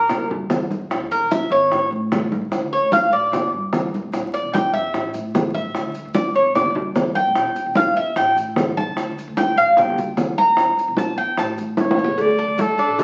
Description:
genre	latin, Cuban son and guajira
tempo	149 BPM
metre	4/4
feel	straight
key	D harmonic minor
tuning	A4 = 436 Hz
part	Cuban tres	arpeggios	0.0-13.0 s	D4 to Bb5	-21 LUFS	equal	none
part	upright bass	bass	0.0-13.0 s	E1 to D3	-33 LUFS	equal	none
part	bongos and cowbell	percussion	0.1-13.0 s	none	-25 LUFS	equal	none
part	congas	percussion	0.1-13.0 s	none	-30 LUFS	equal	none
part	maracas	percussion	0.1-13.0 s	none	-48 LUFS	equal	none
part	bright trumpet	melody	11.8-13.0 s	A4 to D5	-23 LUFS	equal	none
room	wet large studio reverb, RT60 0.8 s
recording	very old 78 rpm record, vinyl crackle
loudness	-20 LUFS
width	mono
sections	0.0-12.2 A section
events	Cuban tres solo 0.0-12.2; drum fill 11.8-12.2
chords	0.1 Gm; 0.9 E6; 1.7 A; 2.5 D5; 3.3 Dsus4; 4.1 Em7; 4.9 A5; 5.7 E7; 6.5 Dsus4; 7.4 Em; 8.2 N.C.; 9.0 D5; 9.8 Fsus4 (rootless); 10.6 Edim; 11.4 A; 12.2 D5

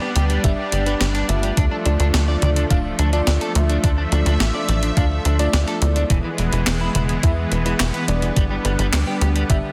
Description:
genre	synthwave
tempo	106 BPM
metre	4/4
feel	straight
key	unclear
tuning	A4 = 440 Hz
part	lush unison pad	sustained chords	0.0-9.7 s	D3 to E5	-28 LUFS	equal	chorus, sidechain pumping
part	electric guitar at the edge of break-up	riff	0.0-9.6 s	E3 to D5	-30 LUFS	equal	subtle chorus, delay
part	FM electric piano with soft pad layer	stabs	0.0-9.6 s	G3 to F5	-29 LUFS	equal	chorus, tremolo, delay
part	tight sequencer bass	bass	0.2-9.6 s	D1 to E2	-22 LUFS	equal	none
part	clean 12-bit digital drum machine	drums	0.2-9.6 s	handclaps, hi-hat, snare drum, toms	-27 LUFS	equal	overdrive
part	electronic kick drum	drums	0.4-9.6 s	none	-21 LUFS	equal	overdrive
room	light reverb, digital ambience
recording	dense, heavily limited modern master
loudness	-19 LUFS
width	mono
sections	0.0-9.7 A section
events	none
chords	0.0 G; 1.6 Dm; 6.1 E; 8.4 G

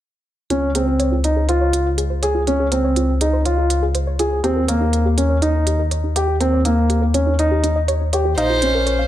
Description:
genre	piano and strings electronica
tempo	122 BPM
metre	4/4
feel	straight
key	unclear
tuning	A4 = 438 Hz
part	soft round pluck	arpeggios	0.5-9.0 s	Eb4 to F5	-26 LUFS	equal	chorus, ping-pong delay
part	dark grand piano	riff	0.5-9.0 s	Bb3 to Ab4	-19 LUFS	equal	ping-pong delay
part	dark detuned saw bass	bass	0.5-9.1 s	Bb1 to Eb2	-19 LUFS	equal	tube saturation
part	electronic hi-hat	drums	0.5-9.0 s	none	-26 LUFS	right 4 dB	none
part	rich violin	melody	8.4-9.1 s	C5	-19 LUFS	right 1 dB	ping-pong delay
room	moderate recital hall reverb, RT60 1.2 s, small room reverb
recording	none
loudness	-16 LUFS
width	side -12 dB against mid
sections	0.5-9.1 A section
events	filter sweep on synth arpeggio sound 0.5-9.1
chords	0.5 Dbmaj7; 4.4 Eb7; 8.4 Bbm

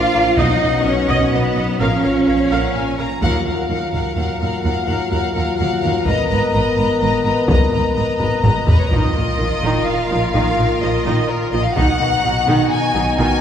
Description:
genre	cinematic, epic orchestral film score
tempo	126 BPM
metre	3/4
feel	straight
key	Eb minor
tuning	A4 = 438 Hz
part	warm symphonic violin section	melody	0.0-13.4 s	Bb4 to Bb5	-22 LUFS	left 3 dB	none
part	rich chamber violin section	second line	0.0-13.4 s	D#4 to F5	-25 LUFS	left 3 dB	none
part	clear trombone section	sustained chords	0.0-3.0 s	F#2 to F#3	-26 LUFS	equal	none
part	mellow French horn section	sustained chords	0.0-13.4 s	Gb3 to Bb4	-23 LUFS	left 2 dB	none
part	clear symphonic cello section	bass	0.0-13.3 s	Eb2 to F4	-22 LUFS	right 2 dB	none
part	warm symphonic viola section	accompaniment	0.1-13.4 s	Eb3 to F5	-24 LUFS	right 2 dB	none
part	rich symphonic double bass section	bass	0.1-13.3 s	Ab1 to Eb2	-22 LUFS	right 2 dB	none
part	taiko ensemble	drums	0.4-12.7 s	none	-19 LUFS	equal	none
part	sub drop	sound effects	9.1-10.3 s	none	-28 LUFS	equal	none
room	wet scoring stage reverb, RT60 1.7 s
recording	heard from further back in the room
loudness	-15 LUFS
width	side -9 dB against mid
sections	0.0-3.2 A section; 3.2-8.9 B section; 8.9-13.4 C section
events	band accent 3.2-3.7; drum fill 8.2-8.9; impact 8.9-10.3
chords	0.4 B; 1.8 Bbm; 3.2 Ebmadd9; 6.1 Abmadd9; 8.9 Bbsus4; 11.8 B

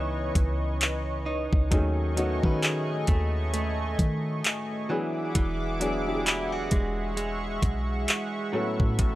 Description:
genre	contemporary R&B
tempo	66 BPM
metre	4/4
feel	swing 58% on 16ths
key	unclear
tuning	A4 = 437 Hz
part	warm grand piano	accompaniment	0.0-9.2 s	E3 to B4	-33 LUFS	left 2 dB	none
part	chorused pulse-width pad	sustained chords	0.0-9.2 s	A3 to D6	-33 LUFS	equal	sidechain pumping
part	direct-recorded clean electric guitar	arpeggios	0.0-9.2 s	A2 to G#4	-33 LUFS	right 2 dB	analog delay
part	soft 808-style bass	bass	0.0-9.2 s	E1 to D#3	-30 LUFS	equal	none
part	smooth R&B drum kit	drums	0.4-9.2 s	handclaps, hi-hat, kick drum	-24 LUFS	equal	none
room	little or no reverb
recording	dry, gritty hardware recording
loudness	-24 LUFS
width	side -16 dB against mid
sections	0.0-9.2 A section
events	none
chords	0.0 C#m9; 1.7 B13/D#; 4.9 E9; 8.5 A6

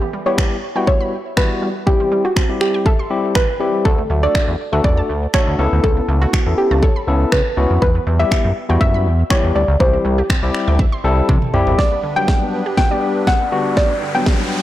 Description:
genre	dance-pop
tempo	121 BPM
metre	4/4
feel	straight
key	unclear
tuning	A4 = 440 Hz
part	soft round pluck	melody	0.0-14.6 s	F#4 to G5	-20 LUFS	equal	chorus
part	wide unison pluck	arpeggios	0.0-14.4 s	G2 to C6	-29 LUFS	right 3 dB	sidechain pumping, dub echo
part	barky tine electric piano	accompaniment	0.3-14.6 s	F#3 to A4	-21 LUFS	left 3 dB	sidechain pumping
part	house drum kit	drums	0.4-14.4 s	finger snaps, kick drum, snare drum, toms	-17 LUFS	equal	soft clipping on snare
part	chorused synth bass	bass	3.9-11.8 s	G#1 to C#3	-17 LUFS	equal	sidechain pumping
part	musette accordion	sustained chords	11.8-14.6 s	G2 to G5	-28 LUFS	right 1 dB	sidechain pumping
part	riser	sound effects	12.7-14.6 s	none	-28 LUFS	equal	none
room	light reverb, digital ambience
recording	blown-out, overdriven recording, overdrive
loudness	-14 LUFS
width	side -14 dB against mid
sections	0.0-11.8 A section; 11.8-14.6 B section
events	drum fill 11.3-11.8, 11.8-14.6; build-up 11.8-14.6; riser 12.7-14.6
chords	0.0 Em; 1.9 C; 3.9 D; 5.6 Aadd9/C#; 7.8 Em; 9.8 C; 11.8 Gmaj7

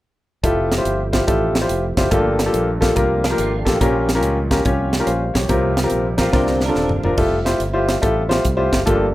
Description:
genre	uptempo gospel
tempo	142 BPM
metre	4/4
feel	swing 66% on 8ths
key	F major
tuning	A4 = 440 Hz
part	clear upright piano	accompaniment	0.4-9.1 s	G2 to F5	-18 LUFS	left 1 dB	none
part	tonewheel organ	sustained chords	0.4-9.1 s	D3 to G4	-28 LUFS	right 2 dB	none
part	modern bright fingered electric bass	bass	0.4-9.1 s	Eb1 to Db2	-23 LUFS	equal	none
part	crisp fusion drum kit	drums	0.4-9.0 s	crash cymbal, hi-hat, kick drum, snare drum, toms	-21 LUFS	right 1 dB	none
part	clean electric guitar	second line	3.2-7.2 s	F3 to Bb4	-30 LUFS	right 6 dB	ensemble chorus
room	moderate studio reverb, RT60 0.6 s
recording	rough home demo mix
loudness	-16 LUFS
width	side -16 dB against mid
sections	0.4-7.2 A section; 7.2-9.1 B section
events	drum fill 6.3-7.2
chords	0.4 Fmaj9; 2.1 Gm9; 3.8 Bbm6; 5.5 C7sus4; 6.3 C9sus4; 7.2 Fmaj9

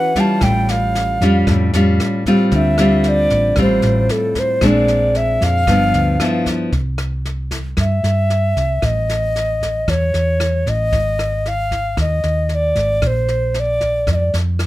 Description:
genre	bossa nova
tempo	114 BPM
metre	4/4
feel	straight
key	A minor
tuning	A4 = 440 Hz
part	breathy bright alto ocarina	melody	0.0-14.3 s	A4 to A5	-18 LUFS	equal	none
part	nylon-string guitar	accompaniment	0.0-6.7 s	G2 to B4	-16 LUFS	left 1 dB	none
part	jazz brush drum kit	drums	0.2-14.7 s	kick drum, rim click, snare drum	-24 LUFS	equal	none
part	hollow-body short-scale fingered electric bass	bass	0.4-14.7 s	G1 to G2	-19 LUFS	equal	none
room	light reverb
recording	none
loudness	-14 LUFS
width	side -16 dB against mid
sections	0.0-6.7 A section; 6.7-14.7 B section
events	none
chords	0.4 A7b13; 2.5 Dm11; 4.6 Bb9; 5.7 G6; 6.7 C; 8.8 A; 10.9 Ab5; 13.0 Bbadd9

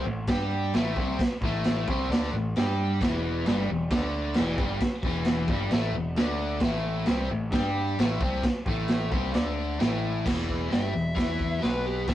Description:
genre	garage rock duo or trio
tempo	132 BPM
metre	4/4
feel	straight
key	unclear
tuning	A4 = 440 Hz
part	biting overdriven guitar	riff	0.0-12.1 s	E2 to G4	-30 LUFS	left 1 dB	none
part	growling picked electric bass	bass	0.0-12.1 s	E1 to G2	-30 LUFS	equal	overdrive
part	raw garage drum kit	drums	0.3-12.1 s	crash cymbal, hi-hat, kick drum, snare drum	-28 LUFS	right 1 dB	none
part	fuzz lead guitar	melody	10.7-12.1 s	E4 to E5	-33 LUFS	equal	distortion
room	moderate small room reverb, RT60 0.6 s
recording	rough rehearsal-room recording, cassette tape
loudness	-24 LUFS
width	side -13 dB against mid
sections	0.0-10.3 A section; 10.3-12.1 B section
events	none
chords	0.0 Am7; 3.0 Em7; 6.6 Amadd11; 10.3 E5

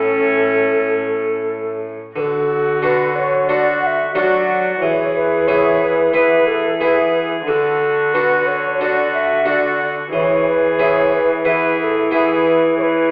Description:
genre	classical, renaissance-style consort dance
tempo	90 BPM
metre	4/4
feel	straight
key	unclear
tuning	A4 = 440 Hz
part	mellow hollow alto recorder	melody	0.0-13.1 s	A4 to F#5	-20 LUFS	equal	none
part	warm viola	second line	0.0-13.1 s	C#4 to G#4	-24 LUFS	equal	none
part	harpsichord	accompaniment	0.0-13.1 s	A2 to B4	-23 LUFS	equal	none
part	rich cello	bass	0.0-13.1 s	A2 to F#3	-25 LUFS	equal	none
room	wet recital hall reverb, RT60 1.4 s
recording	heard from further back in the room, vinyl crackle, telephone sound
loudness	-16 LUFS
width	mono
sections	0.0-2.2 A section; 2.2-13.1 B section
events	none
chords	0.0 A; 2.2 D; 4.8 E; 7.5 D; 10.1 E

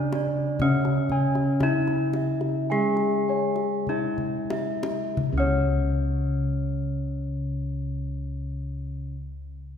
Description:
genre	Javanese gamelan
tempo	44-65 BPM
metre	4/4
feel	straight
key	unclear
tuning	A4 = 440 Hz
part	gamelan-type bronze metallophone	melody	0.0-9.1 s	C#4 to G#4-30c	-29 LUFS	left 3 dB	none
part	gamelan-type bronze metallophone	accompaniment	0.0-9.2 s	C#3 to G#3-30c	-28 LUFS	equal	none
part	gamelan-type bossed gongs	arpeggios	0.0-9.2 s	C#5 to G#5-30c	-33 LUFS	left 2 dB	none
part	gamelan-type bronze metallophone	arpeggios	0.0-9.2 s	C#5 to G#5-30c	-33 LUFS	right 3 dB	none
part	gamelan-type bossed gongs	bass	0.0-9.1 s	C#2 to D4+20c	-31 LUFS	left 1 dB	none
part	kendang	percussion	0.1-5.8 s	none	-32 LUFS	left 2 dB	none
room	wet concert hall reverb, RT60 2.5 s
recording	recorded in a church or concert hall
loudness	-23 LUFS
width	side -8 dB against mid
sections	0.0-5.2 A section; 5.2-9.8 B section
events	slowing down 0.0-5.2; drum fill 3.9-5.2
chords	none

